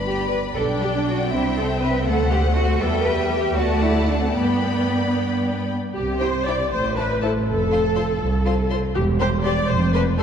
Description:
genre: quick classical-period movement for string orchestra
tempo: 74-82 BPM (dotted quarters)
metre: 6/8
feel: rubato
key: G major, C major from 5.9 s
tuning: A4 = 438 Hz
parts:
  - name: clear studio violin section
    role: melody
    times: 0.0-10.2 s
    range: F#5 to C6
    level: -32 LUFS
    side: left 6 dB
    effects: none
  - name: rich studio violin section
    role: second line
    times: 0.0-10.2 s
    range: E4 to G5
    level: -28 LUFS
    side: left 3 dB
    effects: none
  - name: clear studio cello section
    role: bass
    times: 0.0-10.2 s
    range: C2 to B4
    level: -25 LUFS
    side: right 1 dB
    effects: none
  - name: clear studio double bass section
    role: bass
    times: 0.0-10.2 s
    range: E1 to G2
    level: -24 LUFS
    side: right 2 dB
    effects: none
  - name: rich studio viola section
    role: accompaniment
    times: 0.6-10.2 s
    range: G3 to D5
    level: -23 LUFS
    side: equal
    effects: none
room: wet concert hall reverb, RT60 2.5 s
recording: dark, warm production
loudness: -18 LUFS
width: side -8 dB against mid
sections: 0.0-5.9 A section; 5.9-10.2 B section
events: none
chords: 0.0 G; 0.6 G/B; 1.3 C; 2.1 D7; 2.8 Em; 3.6 D7; 4.3 G; 5.9 C; 6.7 Am; 7.5 F; 8.9 C/E; 9.7 F5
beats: 0.56 | 1.32 2.06 | 2.80 3.56 | 4.35 5.15 | 5.94 6.71 | 7.47 8.21 | 8.95 9.69

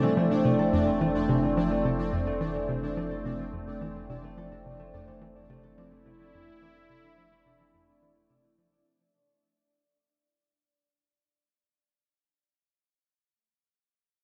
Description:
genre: ambient, sequencer-driven space music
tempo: 107 BPM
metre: 4/4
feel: straight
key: unclear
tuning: A4 = 440 Hz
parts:
  - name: phased analog pad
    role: sustained chords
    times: 0.0-8.9 s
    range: A3 to E5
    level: -33 LUFS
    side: equal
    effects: phaser, chorus
  - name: concert harp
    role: arpeggios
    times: 0.0-11.9 s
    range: E3 to A4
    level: -37 LUFS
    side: equal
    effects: tape echo
  - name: tight sequencer bass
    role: riff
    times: 0.0-8.8 s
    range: F2 to F3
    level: -33 LUFS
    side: equal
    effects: tape echo
  - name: warm sub bass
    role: bass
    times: 0.0-8.8 s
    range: F1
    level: -44 LUFS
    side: equal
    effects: none
  - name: pulsing gated texture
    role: texture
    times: 0.0-8.9 s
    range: D4 to D5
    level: -35 LUFS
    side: equal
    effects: chorus, built-in reverb
room: wet concert hall reverb, RT60 2.0 s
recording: worn, warbling old tape, cassette tape, warbly pitch drift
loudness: -27 LUFS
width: mono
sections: 0.0-8.9 A section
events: fade-out on analog synth bass 0.0-8.9; fade-out on harp 0.0-8.9; fade-out on sub bass 0.0-8.9; fade-out 0.0-8.9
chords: 0.0 F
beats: 0.45 1.01 1.57 | 2.13 2.69 3.25 3.81 | 4.37 4.93 5.49 6.05 | 6.62 7.18 7.74 8.30

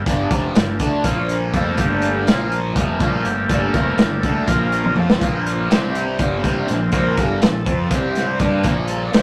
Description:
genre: psychedelic rock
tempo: 245 BPM (eighths)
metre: 7/8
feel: straight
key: unclear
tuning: A4 = 439 Hz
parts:
  - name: combo organ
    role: sustained chords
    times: 0.0-9.2 s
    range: C3 to Bb4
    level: -25 LUFS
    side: equal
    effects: none
  - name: fuzz fingered electric bass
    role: bass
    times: 0.0-9.2 s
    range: F1 to G2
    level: -28 LUFS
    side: equal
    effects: overdrive
  - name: tanpura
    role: drone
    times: 0.0-9.2 s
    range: G2 to G3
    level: -37 LUFS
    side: equal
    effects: none
  - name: fuzz guitar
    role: riff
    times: 0.1-9.2 s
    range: F2 to G4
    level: -24 LUFS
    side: equal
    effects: distortion, phaser
  - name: crunchy breakbeat drum kit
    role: drums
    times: 0.1-9.2 s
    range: hi-hat, kick drum, snare drum, toms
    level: -22 LUFS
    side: equal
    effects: none
room: moderate studio ambience, RT60 0.5 s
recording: rough rehearsal-room recording, tube saturation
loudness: -19 LUFS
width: mono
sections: 0.0-9.2 A section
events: transistor combo organ solo 0.0-9.2; drum fill 4.9-5.2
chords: 0.0 Gmadd9; 1.1 Bb5; 1.5 Gmadd9; 2.3 Bb5; 2.8 Gmadd9; 4.5 Bb5; 5.0 Gsus2; 5.2 Bbadd9; 5.7 C5; 6.2 Bbadd9/G; 7.9 C5; 8.4 Bbadd9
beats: | 0.07 0.32 0.56 0.81 1.05 1.30 1.54 | 1.79 2.04 2.28 2.53 2.77 3.02 3.26 | 3.51 3.75 4.00 4.25 4.49 4.74 4.98 | 5.23 5.47 5.72 5.96 6.21 6.45 6.70 | 6.94 7.19 7.43 7.68 7.92 8.17 8.41 | 8.66 8.90 9.15

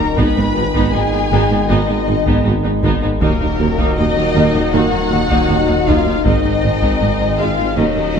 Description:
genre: cinematic, hybrid orchestral and electronic film score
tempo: 79 BPM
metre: 4/4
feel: straight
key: unclear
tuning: A4 = 435 Hz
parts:
  - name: rich symphonic violin section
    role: melody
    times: 0.0-8.2 s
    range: Bb4 to Cb6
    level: -22 LUFS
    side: left 6 dB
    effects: none
  - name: warm symphonic violin section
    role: second line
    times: 0.0-8.2 s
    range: Bb3 to Cb5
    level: -23 LUFS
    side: left 4 dB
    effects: none
  - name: rich symphonic viola section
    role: accompaniment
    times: 0.0-8.2 s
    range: Gb3 to Eb4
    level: -22 LUFS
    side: right 2 dB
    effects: none
  - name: clear trombone section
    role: sustained chords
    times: 0.0-8.2 s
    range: Eb3 to Ab3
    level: -24 LUFS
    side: right 4 dB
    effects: none
  - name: mellow French horn section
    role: sustained chords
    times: 0.0-8.2 s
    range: Bb2 to Eb4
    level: -23 LUFS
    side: left 7 dB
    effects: none
  - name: rich symphonic cello section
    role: bass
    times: 0.0-8.2 s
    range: Eb2 to Ab2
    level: -22 LUFS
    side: right 3 dB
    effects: none
  - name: wide detuned saw bass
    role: bass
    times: 0.0-8.2 s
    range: Eb1 to Ab1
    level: -23 LUFS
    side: left 1 dB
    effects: chorus
  - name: mellow tuba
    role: bass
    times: 0.2-8.2 s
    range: Ab1 to Eb2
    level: -23 LUFS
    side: right 4 dB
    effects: none
  - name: rich symphonic double bass section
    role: bass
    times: 0.2-8.2 s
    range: Ab1 to Eb2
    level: -23 LUFS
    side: right 4 dB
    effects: none
  - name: solo taiko drums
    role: drums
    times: 0.2-7.5 s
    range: none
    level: -22 LUFS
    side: left 1 dB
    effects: none
  - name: cymbal swell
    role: sound effects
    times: 7.7-8.2 s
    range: none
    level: -34 LUFS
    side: left 2 dB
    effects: none
room: moderate scoring stage reverb, RT60 1.9 s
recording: dark, warm production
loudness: -13 LUFS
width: side -7 dB against mid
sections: 0.0-8.2 A section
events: none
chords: 0.2 Abmadd9; 3.2 Ebm; 6.3 Ab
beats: | 0.18 0.94 1.70 2.46 | 3.21 3.98 4.73 5.49 | 6.25 7.01 7.77

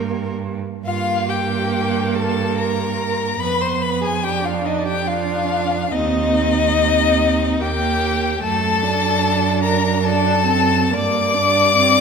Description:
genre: classical, slow romantic movement for string quartet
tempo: 71 BPM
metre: 3/4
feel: uneven beats, rubato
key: G minor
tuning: A4 = 440 Hz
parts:
  - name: rich violin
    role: second line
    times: 0.0-12.0 s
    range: Eb4 to D5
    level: -23 LUFS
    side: left 1 dB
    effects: none
  - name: rich viola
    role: accompaniment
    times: 0.0-12.0 s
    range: A3 to D4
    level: -23 LUFS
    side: right 4 dB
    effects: none
  - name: clear cello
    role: bass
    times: 0.0-12.0 s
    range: Eb2 to G2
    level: -22 LUFS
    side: right 6 dB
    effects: none
  - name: rich violin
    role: melody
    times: 0.9-12.0 s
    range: Eb5 to D6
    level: -20 LUFS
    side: left 7 dB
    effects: none
room: wet scoring stage reverb, RT60 1.7 s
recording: minimal, uncompressed stereo recording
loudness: -16 LUFS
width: side -6 dB against mid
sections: 0.8-12.0 A section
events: none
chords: 0.0 Gm; 3.4 Fdim7(no3); 5.9 Cm/Eb; 8.4 D7/F#; 10.9 Gm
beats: | 0.83 1.70 2.55 | 3.39 4.23 5.07 | 5.92 6.77 7.60 | 8.43 9.23 10.05 | 10.94 11.78

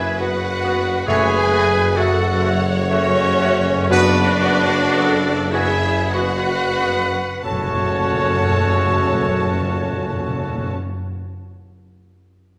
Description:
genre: classical, slow romantic movement for symphony orchestra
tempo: 43-69 BPM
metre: 3/4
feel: rubato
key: F# minor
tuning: A4 = 440 Hz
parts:
  - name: dark symphonic violin section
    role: melody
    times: 0.0-10.7 s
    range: C#5 to A5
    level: -28 LUFS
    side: equal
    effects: none
  - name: bright silver concert flute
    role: second line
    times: 0.0-10.7 s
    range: F#4 to A5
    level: -27 LUFS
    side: equal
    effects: none
  - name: clear clarinet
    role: second line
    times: 0.0-10.7 s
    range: C#4 to A4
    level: -27 LUFS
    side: equal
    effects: none
  - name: rich symphonic violin section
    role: second line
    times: 0.0-10.7 s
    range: C#4 to A5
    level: -32 LUFS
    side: equal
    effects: none
  - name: rich symphonic viola section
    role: accompaniment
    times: 0.0-10.7 s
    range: C#4 to C#5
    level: -29 LUFS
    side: equal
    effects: none
  - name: concert harp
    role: arpeggios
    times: 0.0-11.3 s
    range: F#2 to F#5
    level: -32 LUFS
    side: equal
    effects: none
  - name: rich symphonic double bass section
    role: bass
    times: 0.0-10.7 s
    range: F#1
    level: -30 LUFS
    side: equal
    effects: none
  - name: warm symphonic cello section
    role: bass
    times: 0.0-10.7 s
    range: F#2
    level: -29 LUFS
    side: equal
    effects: none
  - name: warm tuba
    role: bass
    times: 0.0-10.7 s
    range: F#1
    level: -29 LUFS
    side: equal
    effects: none
  - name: warm oboe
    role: second line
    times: 0.2-10.7 s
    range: F#4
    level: -32 LUFS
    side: equal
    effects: none
  - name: warm bassoon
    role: accompaniment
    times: 0.2-10.7 s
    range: A3 to C#4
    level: -30 LUFS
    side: equal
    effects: none
  - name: dark French horn section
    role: sustained chords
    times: 1.1-10.7 s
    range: A3 to F#4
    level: -29 LUFS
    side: equal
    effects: none
  - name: clear trumpet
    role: stabs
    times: 1.1-10.7 s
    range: B4 to C#5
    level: -27 LUFS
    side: equal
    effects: none
  - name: timpani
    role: percussion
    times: 1.1-2.4, 7.4-10.7 s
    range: F#2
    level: -28 LUFS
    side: equal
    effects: none
room: wet scoring stage reverb, RT60 1.8 s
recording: none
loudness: -18 LUFS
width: mono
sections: 0.0-7.4 A section; 7.4-11.0 B section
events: slowing down 0.0-7.4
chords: 0.0 Bm/F#; 1.1 F#m; 3.9 Bm/F#; 7.4 F#m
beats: 0.20 | 1.08 1.97 2.92 | 3.91 4.95 6.13 | 7.44 8.65 9.82

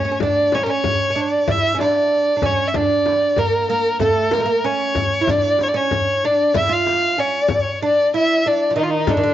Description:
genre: Arabic maqam ensemble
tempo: 95 BPM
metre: 4/4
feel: straight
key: D maqam nahawand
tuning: A4 = 439 Hz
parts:
  - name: warm violin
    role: melody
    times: 0.0-9.3 s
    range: D4 to F5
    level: -17 LUFS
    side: left 1 dB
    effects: cassette tape, plate reverb
  - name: oud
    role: second line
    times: 0.0-9.3 s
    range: D3 to F4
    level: -22 LUFS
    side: right 6 dB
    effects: cassette tape, plate reverb
  - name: darbuka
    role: percussion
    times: 0.2-9.2 s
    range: none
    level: -27 LUFS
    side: left 3 dB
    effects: none
  - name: frame drum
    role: percussion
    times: 0.2-9.2 s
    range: none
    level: -26 LUFS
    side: left 6 dB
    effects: none
  - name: riq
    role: percussion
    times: 4.0-9.2 s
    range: none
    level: -33 LUFS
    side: left 8 dB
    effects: none
room: moderate booth ambience, RT60 0.2 s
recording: home recording on cassette, nothing above 7.6 kHz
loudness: -16 LUFS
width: side -12 dB against mid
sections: 0.0-9.1 A section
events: none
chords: none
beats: 0.21 0.85 | 1.48 2.11 2.75 3.38 | 4.01 4.65 5.28 5.91 | 6.55 7.18 7.81 8.45 | 9.08

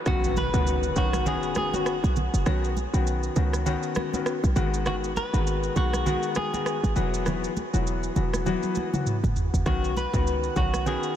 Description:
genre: afrobeats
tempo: 100 BPM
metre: 4/4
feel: swing 58% on 16ths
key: B major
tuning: A4 = 438 Hz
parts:
  - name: noise sweep and impact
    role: sound effects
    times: 0.0-2.5 s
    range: none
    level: -36 LUFS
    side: right 1 dB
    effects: none
  - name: direct-recorded clean electric guitar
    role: melody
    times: 0.1-11.2 s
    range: F#4 to B4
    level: -31 LUFS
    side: equal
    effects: lush chorus, tape echo
  - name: clear grand piano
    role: accompaniment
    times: 0.1-11.2 s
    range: D#3 to F#4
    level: -29 LUFS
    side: left 4 dB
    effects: wide subtle chorus
  - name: short 808-style bass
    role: bass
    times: 0.1-11.0 s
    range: E1 to C#2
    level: -26 LUFS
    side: equal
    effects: none
  - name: afro-pop drum kit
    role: drums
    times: 0.1-11.2 s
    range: kick drum, rim click, shaker, toms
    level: -32 LUFS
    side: right 1 dB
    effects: none
  - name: congas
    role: percussion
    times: 0.1-11.0 s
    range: none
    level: -34 LUFS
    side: right 4 dB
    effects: none
room: moderate huge ambient reverb, RT60 9.6 s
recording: dreamy mix soaked in reverb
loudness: -23 LUFS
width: side -10 dB against mid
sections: 0.1-11.2 A section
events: break 0.1-9.7; impact 0.1-2.5; drum fill 8.5-9.7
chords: 0.1 Badd9; 4.6 G#m7; 7.0 Esus2; 9.7 Badd9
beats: | 0.06 0.66 1.26 1.86 | 2.46 3.06 3.66 4.26 | 4.86 5.46 6.06 6.66 | 7.26 7.86 8.46 9.06 | 9.66 10.26 10.86

